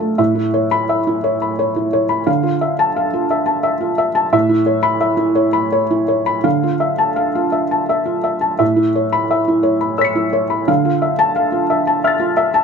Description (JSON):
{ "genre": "neoclassical minimalist piano", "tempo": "86 BPM", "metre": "3/4", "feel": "uneven beats, rubato", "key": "A major", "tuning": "A4 = 439 Hz", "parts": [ { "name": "felt-muted upright piano", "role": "solo", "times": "0.0-12.6 s", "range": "A2 to C#7", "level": "-14 LUFS", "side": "equal", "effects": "none" } ], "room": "light reverb", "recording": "none", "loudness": "-14 LUFS", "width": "side -6 dB against mid", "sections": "0.2-12.6 A section", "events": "none", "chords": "0.2 Aadd9; 2.3 Dmadd9; 4.3 Aadd9; 6.4 Dmadd9; 8.6 Aadd9; 10.7 Dmadd9" }